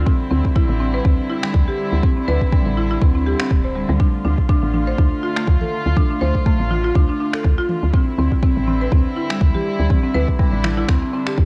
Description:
afro house; 122 BPM; 4/4; swing 55% on 16ths; A4 = 442 Hz
dark chamber string section; sustained chords; 0.0-11.5 s; D3 to F4; -28 LUFS; equal; sidechain pumping, cassette tape
woody FM bass; bass; 0.0-11.5 s; D1 to D2; -22 LUFS; equal; tube saturation, sidechain pumping
buzzing marimba with medium hard mallets; arpeggios; 0.1-11.4 s; G3 to C5; -25 LUFS; equal; sidechain pumping, cassette tape, tape echo
electronic kick drum; drums; 0.1-11.5 s; -19 LUFS; equal; studio reverb, cassette tape
afro-pop drum kit; drums; 1.4-11.4 s; finger snaps, toms; -29 LUFS; equal; studio reverb, cassette tape
digital ambience; home recording on cassette; -18 LUFS; mono
0.0-11.5 A section
0.1 Cadd9; 4.0 Dm7; 7.9 Cadd9
| 0.07 0.56 1.05 1.54 | 2.03 2.53 3.02 3.51 | 4.00 4.49 4.99 5.48 | 5.97 6.46 6.95 7.44 | 7.93 8.43 8.92 9.41 | 9.90 10.39 10.89 11.38

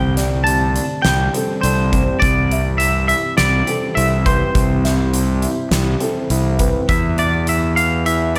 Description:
post-rock; 103 BPM; 4/4; straight; C major; A4 = 439 Hz
twangy electric guitar; melody; 0.0-8.4 s; C5 to A5; -22 LUFS; equal; analog delay
warbly tape-like pad; sustained chords; 0.0-6.9 s; D3 to G4; -32 LUFS; equal
electric guitar through a small old amp; arpeggios; 0.0-8.4 s; B2 to E4; -27 LUFS; equal; analog delay
fuzz fingered electric bass; bass; 0.0-8.4 s; C2 to E2; -21 LUFS; equal; overdrive
felt-muted upright piano; arpeggios; 0.2-8.4 s; A4 to E5; -30 LUFS; equal; analog delay
huge arena drum kit; drums; 0.2-8.4 s; hi-hat, kick drum, snare drum; -24 LUFS; equal
light reverb, studio reverb; -17 LUFS; mono
0.0-6.9 A section; 6.9-8.4 B section
0.0 Gsus2/C; 2.2 C; 6.9 E5
0.47 1.05 1.64 | 2.22 2.81 3.39 3.97 | 4.56 5.14 5.73 6.31 | 6.89 7.48 8.06

